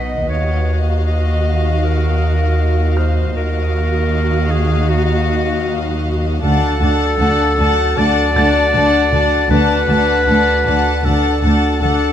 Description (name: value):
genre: cinematic, suspense film score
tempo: 78 BPM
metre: 4/4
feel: straight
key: unclear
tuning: A4 = 439 Hz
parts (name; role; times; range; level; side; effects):
- dark chamber violin section; melody; 0.0-12.1 s; E#5 to A5; -24 LUFS; left 6 dB; none
- bright clarinet; second line; 0.0-12.1 s; F#4 to D#5; -19 LUFS; left 2 dB; none
- warm symphonic violin section; second line; 0.0-12.1 s; D#5 to F#5; -25 LUFS; left 2 dB; none
- warm chamber viola section; accompaniment; 0.0-12.1 s; B3 to F#4; -23 LUFS; equal; none
- deep dark ambient pad; sustained chords; 0.0-12.1 s; D#4 to F#5; -26 LUFS; right 3 dB; chorus, built-in reverb
- dark studio cello section; bass; 0.0-11.9 s; D2 to B2; -21 LUFS; right 1 dB; none
- dark symphonic double bass section; bass; 0.0-11.9 s; B1 to D#2; -21 LUFS; right 2 dB; none
- pure sine sub bass; drone; 0.0-12.1 s; B1 to D#2; -20 LUFS; equal; none
- warm concert grand piano; texture; 0.0-12.1 s; D#5 to B6; -29 LUFS; right 1 dB; none
room: moderate scoring stage reverb, RT60 2.0 s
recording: vinyl crackle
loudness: -13 LUFS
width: side -10 dB against mid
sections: 0.0-12.1 A section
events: none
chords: 0.3 D#madd9; 6.4 D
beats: | 0.29 1.06 1.83 2.60 | 3.36 4.12 4.88 5.65 | 6.42 7.19 7.97 8.74 | 9.51 10.28 11.04 11.81